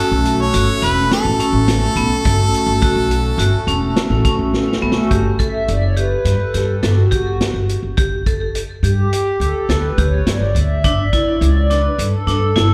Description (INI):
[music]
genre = progressive instrumental, band music in an uneven meter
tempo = 105 BPM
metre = 5/4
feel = straight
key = G lydian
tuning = A4 = 440 Hz
[part]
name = bright harmonica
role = melody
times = 0.0-4.5 s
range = A4 to C#5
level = -22 LUFS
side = equal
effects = slapback echo
[part]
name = hollow soft pad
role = accompaniment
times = 0.0-12.7 s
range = A3 to E5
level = -23 LUFS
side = equal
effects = chorus, slapback echo
[part]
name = vibraphone with hard mallets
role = arpeggios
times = 0.0-12.7 s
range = B3 to A4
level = -25 LUFS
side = equal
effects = slapback echo, digital delay
[part]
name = upright bass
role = bass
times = 0.1-12.7 s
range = E1 to G2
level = -20 LUFS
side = equal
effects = none
[part]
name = vintage drum kit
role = drums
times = 0.3-12.7 s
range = hi-hat, kick drum, snare drum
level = -23 LUFS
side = equal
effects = none
[sound]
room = small room ambience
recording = live gig heard through the venue's PA, club reverb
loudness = -16 LUFS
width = mono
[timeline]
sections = 0.0-5.1 A section; 5.1-12.7 B section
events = drum fill 4.5-5.1; analog synth pad solo 5.1-12.7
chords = 0.0 F#m; 5.1 G5; 10.8 D5/G